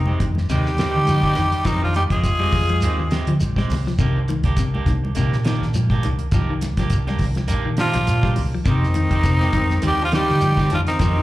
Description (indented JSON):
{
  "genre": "afrobeat",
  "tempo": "103 BPM",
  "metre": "4/4",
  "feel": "swing 55% on 16ths",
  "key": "unclear",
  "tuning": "A4 = 440 Hz",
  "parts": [
    { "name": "growling tenor saxophone", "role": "melody", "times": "0.0-3.2, 7.8-11.2 s", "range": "Eb4 to Ab4", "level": "-22 LUFS", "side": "equal", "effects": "slapback echo" },
    { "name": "edgy alto saxophone", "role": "second line", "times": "0.0-3.3, 7.8-11.2 s", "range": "C4 to F4", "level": "-30 LUFS", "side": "right 2 dB", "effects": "slapback echo" },
    { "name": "growling baritone saxophone", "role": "second line", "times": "0.0-3.2, 7.8-11.2 s", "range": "Eb3 to Ab3", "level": "-30 LUFS", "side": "left 1 dB", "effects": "slapback echo" },
    { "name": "clean electric guitar", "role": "arpeggios", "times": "0.0-11.2 s", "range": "C3 to G3", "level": "-26 LUFS", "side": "left 4 dB", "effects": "none" },
    { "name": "fingered electric bass", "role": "bass", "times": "0.0-11.2 s", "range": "Bb1 to D3", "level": "-21 LUFS", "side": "equal", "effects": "none" },
    { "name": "electric guitar at the edge of break-up", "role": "stabs", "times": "0.1-11.2 s", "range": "Eb3 to G4", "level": "-29 LUFS", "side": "right 6 dB", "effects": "slapback echo, tape echo" },
    { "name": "congas", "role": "percussion", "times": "0.1-11.2 s", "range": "none", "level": "-30 LUFS", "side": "right 1 dB", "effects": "none" },
    { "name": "damped 70s drum kit", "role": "drums", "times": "0.2-11.2 s", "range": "hi-hat, kick drum, snare drum", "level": "-23 LUFS", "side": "equal", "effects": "none" },
    { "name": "shekere", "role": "percussion", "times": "0.2-11.2 s", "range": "none", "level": "-26 LUFS", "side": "equal", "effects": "none" }
  ],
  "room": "light reverb",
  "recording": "live gig heard through the venue's PA, club reverb",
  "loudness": "-17 LUFS",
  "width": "side -16 dB against mid",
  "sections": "0.0-11.2 A section",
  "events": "none",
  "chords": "0.0 Fm9; 4.0 Cm9; 8.7 Fm9",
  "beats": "0.50 1.08 | 1.66 2.25 2.83 3.41 | 4.00 4.58 5.16 5.75 | 6.33 6.92 7.50 8.09 | 8.67 9.26 9.84 10.43 | 11.01"
}